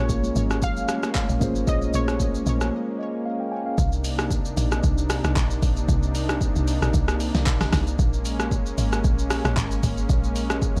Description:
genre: amapiano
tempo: 114 BPM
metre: 4/4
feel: swing 55% on 16ths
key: C phrygian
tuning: A4 = 440 Hz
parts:
  - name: analog pluck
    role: melody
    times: 0.0-2.4 s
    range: Db5 to F5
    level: -34 LUFS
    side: equal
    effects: chorus, digital delay
  - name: mellow tine electric piano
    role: accompaniment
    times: 0.0-3.9 s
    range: Bb3 to Ab5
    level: -31 LUFS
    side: equal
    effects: none
  - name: warm analog pad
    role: sustained chords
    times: 0.0-10.8 s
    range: C3 to Eb4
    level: -31 LUFS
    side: equal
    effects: chorus, sidechain pumping
  - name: woody log drum bass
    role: bass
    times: 0.0-10.8 s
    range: Ab1 to C2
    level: -27 LUFS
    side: equal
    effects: none
  - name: deep house drum kit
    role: drums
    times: 0.1-10.8 s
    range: handclaps, hi-hat, kick drum, rim click, shaker, snare drum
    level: -27 LUFS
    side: equal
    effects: none
  - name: congas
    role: percussion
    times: 0.2-2.6 s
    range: none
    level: -38 LUFS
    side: equal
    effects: none
room: digital ambience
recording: dark, warm production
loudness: -23 LUFS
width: mono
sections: 0.0-3.8 A section; 3.8-10.8 B section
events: break 2.7-3.8; tine electric piano fill 2.7-3.8; drop 3.8-10.8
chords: 0.0 Bbm9; 3.8 Cm9; 8.0 Bbm7

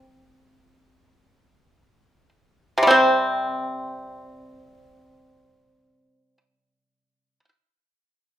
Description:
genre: chinese traditional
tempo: free time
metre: none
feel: none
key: unclear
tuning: A4 = 439 Hz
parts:
  - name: pipa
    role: solo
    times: 0.0-7.5 s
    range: C3 to C4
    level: -17 LUFS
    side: equal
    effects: none
room: light reverb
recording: band playing live in one room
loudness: -17 LUFS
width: side -11 dB against mid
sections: 0.0-2.9 A section; 2.9-8.4 B section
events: slowing down 0.0-2.9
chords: none

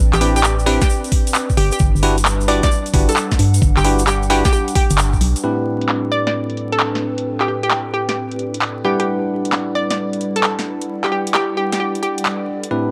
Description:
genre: UK garage, two-step garage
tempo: 132 BPM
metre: 4/4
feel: swing 67% on 16ths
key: A dorian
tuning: A4 = 440 Hz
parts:
  - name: ethereal airy pad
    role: sustained chords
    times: 0.0-12.9 s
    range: A2 to F#5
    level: -34 LUFS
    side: equal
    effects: none
  - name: organ-like FM bass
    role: bass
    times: 0.0-5.3 s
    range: G1 to G2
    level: -19 LUFS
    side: equal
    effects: none
  - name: warbly tape-like pad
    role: texture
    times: 0.0-12.9 s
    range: G3 to G5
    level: -30 LUFS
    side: equal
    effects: chorus, built-in reverb, sidechain pumping
  - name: hollow square pluck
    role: melody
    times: 0.1-12.4 s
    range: G4 to D5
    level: -24 LUFS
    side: equal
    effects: chorus, analog delay
  - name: garage drum kit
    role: drums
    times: 0.1-12.7 s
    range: handclaps, hi-hat, snare drum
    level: -23 LUFS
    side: equal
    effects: low-pass filter on hats, low-pass filter on snare, low-pass filter on room
  - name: tube shaker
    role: percussion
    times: 0.1-5.4 s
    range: none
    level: -30 LUFS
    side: equal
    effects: none
  - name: bell-like tine electric piano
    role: stabs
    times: 0.2-12.9 s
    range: A2 to F#5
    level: -24 LUFS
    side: equal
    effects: analog delay
  - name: electronic kick drum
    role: drums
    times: 0.8-5.2 s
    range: none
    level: -19 LUFS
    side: equal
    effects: none
room: light reverb, digital ambience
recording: dry, gritty hardware recording, vinyl crackle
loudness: -18 LUFS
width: mono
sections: 0.0-5.4 A section; 5.4-12.9 B section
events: band accent 5.0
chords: 0.0 Am11; 1.6 Em9/G; 5.4 Am11; 8.8 Em9/G

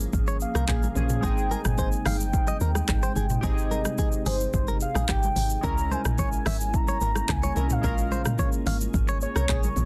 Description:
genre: afrobeats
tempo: 109 BPM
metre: 4/4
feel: straight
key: Ab major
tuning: A4 = 440 Hz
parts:
  - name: warm analog keys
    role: accompaniment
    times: 0.0-9.9 s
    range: F3 to Bb4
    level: -37 LUFS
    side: equal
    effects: chorus
  - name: glassy FM pad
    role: sustained chords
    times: 0.0-9.9 s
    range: C3 to Ab4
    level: -39 LUFS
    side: equal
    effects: ensemble chorus, built-in reverb
  - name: deep log drum bass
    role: bass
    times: 0.0-9.9 s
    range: G1 to Eb2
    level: -30 LUFS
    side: equal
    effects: none
  - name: afro-pop drum kit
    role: drums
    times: 0.0-9.9 s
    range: handclaps, hi-hat, kick drum, rim click, shaker, toms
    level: -30 LUFS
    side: equal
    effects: soft clipping on snare
  - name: congas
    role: percussion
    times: 0.0-9.9 s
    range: none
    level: -38 LUFS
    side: equal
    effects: none
  - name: direct-recorded clean electric guitar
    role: riff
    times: 0.3-9.7 s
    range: G4 to F5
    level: -37 LUFS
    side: equal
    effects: digital delay
  - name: warm velvety synth lead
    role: melody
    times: 0.4-9.9 s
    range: C5 to Bb5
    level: -34 LUFS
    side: equal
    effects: chorus, digital delay
room: light reverb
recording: dense, heavily limited modern master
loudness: -25 LUFS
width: mono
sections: 0.0-9.9 A section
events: none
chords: 0.0 Bbm7; 1.2 Abmaj7; 5.6 Dbm6; 7.8 Bbm7

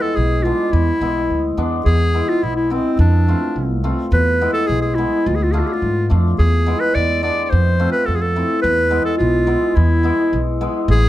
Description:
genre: klezmer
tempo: 106 BPM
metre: 2/4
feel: straight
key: E phrygian dominant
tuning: A4 = 440 Hz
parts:
  - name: clear clarinet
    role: melody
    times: 0.0-11.1 s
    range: C4 to D5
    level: -19 LUFS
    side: equal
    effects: none
  - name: cimbalom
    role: accompaniment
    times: 0.0-10.9 s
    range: G#3 to F4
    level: -22 LUFS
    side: left 2 dB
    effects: none
  - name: upright bass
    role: bass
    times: 0.2-11.1 s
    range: A1 to G#2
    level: -17 LUFS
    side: equal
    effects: none
room: light reverb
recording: none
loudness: -15 LUFS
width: side -14 dB against mid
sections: 0.0-1.9 A section; 1.9-10.9 A section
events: none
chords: 0.0 E; 3.0 F; 4.1 E; 5.3 Dm; 6.4 E; 7.5 F; 8.6 E

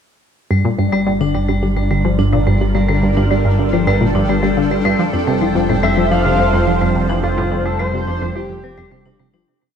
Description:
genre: ambient, sequencer-driven space music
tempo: 107 BPM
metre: 4/4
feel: straight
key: G minor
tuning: A4 = 439 Hz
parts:
  - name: lush unison pad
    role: sustained chords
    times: 0.5-9.5 s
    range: F3 to G5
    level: -22 LUFS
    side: right 1 dB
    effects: chorus, phaser
  - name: vibraphone with hard mallets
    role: arpeggios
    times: 0.5-9.4 s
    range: F3 to D4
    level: -21 LUFS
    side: moving between left 5 dB and right 2 dB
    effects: auto-pan, tape echo
  - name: tight sequenced synth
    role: riff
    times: 0.5-9.5 s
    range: F2 to C4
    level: -18 LUFS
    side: equal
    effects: chorus, tape echo
  - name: fat analog bass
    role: bass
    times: 0.5-9.5 s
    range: F1 to G1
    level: -20 LUFS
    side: equal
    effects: none
  - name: pulsing gated texture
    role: texture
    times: 0.5-9.5 s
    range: D4 to D5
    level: -26 LUFS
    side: right 1 dB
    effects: chorus, built-in reverb
  - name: pulse-width lead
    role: melody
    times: 5.8-9.2 s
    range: F4 to F5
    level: -21 LUFS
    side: left 1 dB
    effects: chorus, tape echo
room: moderate plate reverb, RT60 2.7 s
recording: dreamy mix soaked in reverb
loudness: -14 LUFS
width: side -8 dB against mid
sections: 0.5-9.5 A section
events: fade-in on analog synth pad 0.5-9.5; fade-out 6.5-9.5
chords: 0.5 Gm7; 5.0 Fadd9

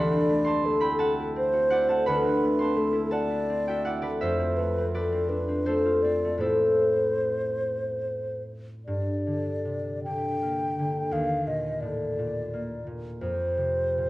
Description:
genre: classical, impressionist duo for flute and harp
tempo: 66-88 BPM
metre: 3/4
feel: rubato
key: A dorian, G minor from 8.9 s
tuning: A4 = 440 Hz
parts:
  - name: mellow hollow concert flute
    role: melody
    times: 0.0-14.1 s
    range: A4 to G5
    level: -27 LUFS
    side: equal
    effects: none
  - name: concert harp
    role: accompaniment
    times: 0.0-14.1 s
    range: D2 to C6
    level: -26 LUFS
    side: equal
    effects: none
room: wet stone room reverb, RT60 1.1 s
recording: worn, warbling old tape, cassette tape, warbly pitch drift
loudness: -24 LUFS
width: side -17 dB against mid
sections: 0.0-8.9 A section; 8.9-14.1 B section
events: none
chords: 0.0 D13; 4.2 Fmaj7; 6.4 Amadd9; 8.9 Gmadd9; 11.1 Eb5; 13.2 Fsus4

